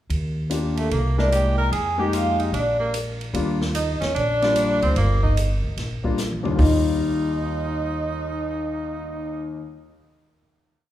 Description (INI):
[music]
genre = jazz, small-group swing and bop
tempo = 148 BPM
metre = 4/4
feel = swing 66% on 8ths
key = Eb major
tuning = A4 = 438 Hz
[part]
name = upright bass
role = bass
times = 0.1-9.6 s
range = G1 to F2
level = -24 LUFS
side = equal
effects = none
[part]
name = swinging big-band drum kit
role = drums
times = 0.1-6.7 s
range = hi-hat, kick drum, ride cymbal, snare drum, toms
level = -30 LUFS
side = right 1 dB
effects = none
[part]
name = warm grand piano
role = accompaniment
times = 0.5-9.6 s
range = Eb2 to Bb4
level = -25 LUFS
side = left 3 dB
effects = none
[part]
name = vibraphone with soft mallets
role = melody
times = 0.8-9.6 s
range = A4 to Bb5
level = -26 LUFS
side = equal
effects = none
[part]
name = bright tenor saxophone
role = second line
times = 0.8-9.6 s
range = A3 to Bb4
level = -28 LUFS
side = right 4 dB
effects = none
[sound]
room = wet recital hall reverb, RT60 1.6 s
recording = recorded in a church or concert hall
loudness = -20 LUFS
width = side -12 dB against mid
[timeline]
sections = 0.1-6.6 A section; 6.6-9.8 final chord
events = drum fill 6.2-6.6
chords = 0.1 Ebmaj9; 0.9 C7b13; 1.7 Fm11; 2.5 Bb; 3.3 Ebmaj9; 6.6 Ebadd9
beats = | 0.10 0.51 0.91 1.32 | 1.72 2.13 2.53 2.94 | 3.35 3.75 4.16 4.56 | 4.97 5.37 5.78 6.18 | 6.59 6.99 7.40 7.80 | 8.21 8.61 9.01 9.42